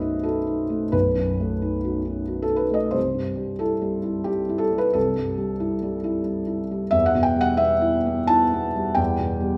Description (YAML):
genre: neoclassical minimalist piano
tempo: 89 BPM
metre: 3/4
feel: rubato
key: E minor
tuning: A4 = 439 Hz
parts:
  - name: felt-muted upright piano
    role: solo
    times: 0.0-9.6 s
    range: B1 to A5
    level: -23 LUFS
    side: equal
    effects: none
room: wet large studio reverb, RT60 0.8 s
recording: band playing live in one room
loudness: -23 LUFS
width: mono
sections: 0.0-9.6 A section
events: none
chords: 0.0 B7; 3.0 Am7/C; 6.9 Em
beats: 0.25 | 0.93 1.61 2.28 | 2.96 3.63 4.30 | 4.96 5.62 6.28 | 6.94 7.60 8.30 | 8.99